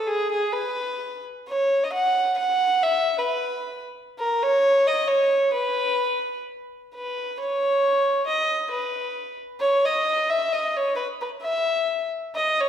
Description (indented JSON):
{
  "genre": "mexican folk",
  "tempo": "133 BPM",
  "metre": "3/4",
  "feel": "swing 55% on 8ths",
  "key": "B major",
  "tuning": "A4 = 440 Hz",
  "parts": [
    { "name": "warm violin", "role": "solo", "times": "0.0-12.7 s", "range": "G#4 to F#5", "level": "-21 LUFS", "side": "equal", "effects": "none" }
  ],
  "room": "wet recital hall reverb, RT60 1.7 s",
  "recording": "heard from further back in the room",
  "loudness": "-21 LUFS",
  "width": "side -9 dB against mid",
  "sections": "0.0-6.9 A section; 6.9-12.7 A section",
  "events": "none",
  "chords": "none"
}